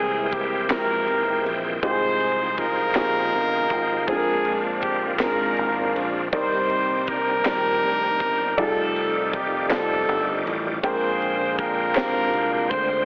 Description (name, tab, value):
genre	slow gospel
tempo	53 BPM (dotted quarters)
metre	6/8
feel	straight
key	unclear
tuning	A4 = 440 Hz
part	warm horn section	melody	0.0-13.1 s	C4 to C5	-25 LUFS	equal	none
part	dark baby grand piano	accompaniment	0.0-13.1 s	Bb2 to G5	-30 LUFS	equal	none
part	bright tonewheel organ	sustained chords	0.0-13.1 s	D3 to G5	-32 LUFS	equal	fast rotary speaker, overdrive, chorus vibrato
part	fingered electric bass	bass	0.0-13.1 s	F1 to D2	-36 LUFS	equal	none
part	crisp fusion drum kit	drums	0.3-12.9 s	kick drum, ride cymbal, snare drum	-36 LUFS	equal	none
part	group handclap	percussion	0.7-12.3 s	none	-30 LUFS	equal	none
room	light reverb, studio reverb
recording	heavily compressed radio sound, telephone sound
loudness	-23 LUFS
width	mono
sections	0.0-13.1 A section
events	none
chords	0.0 C7b13; 1.8 Fm9/C; 4.1 Bb9; 6.3 Cm9; 8.6 F13; 10.8 Bb13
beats	0.71 | 1.83 2.96 | 4.08 5.21 | 6.33 7.46 | 8.58 9.71 | 10.83 11.96